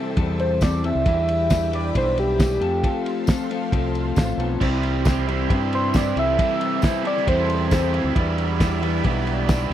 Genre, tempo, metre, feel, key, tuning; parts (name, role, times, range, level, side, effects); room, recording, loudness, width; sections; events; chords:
indie rock; 135 BPM; 4/4; straight; A4 = 441 Hz
overdriven synth lead; melody; 0.0-8.1 s; G4 to E5; -24 LUFS; right 1 dB; chorus, tape echo
analog string pad; sustained chords; 0.0-9.7 s; G4 to C6; -36 LUFS; right 1 dB; ensemble chorus
electric guitar through a small old amp; riff; 0.0-9.7 s; C3 to C5; -26 LUFS; left 4 dB; analog chorus
growling fingered electric bass; bass; 0.2-9.7 s; A1 to G2; -25 LUFS; equal; overdrive
cloth-damped thuddy drum kit; drums; 0.2-9.6 s; crash cymbal, kick drum, ride cymbal, snare drum; -24 LUFS; equal
tambourine; percussion; 0.6-9.6 s; -40 LUFS; left 8 dB
raw garage guitar; riff; 4.6-9.7 s; E3 to E4; -26 LUFS; right 9 dB; overdrive, wide subtle chorus
light reverb; dry, close 1970s-style studio recording; -19 LUFS; side -11 dB against mid
0.0-9.7 A section
analog synth lead solo 0.0-9.7
0.0 Am7; 1.1 Em7; 2.6 F; 4.6 C; 6.2 Am7/C; 8.2 Em7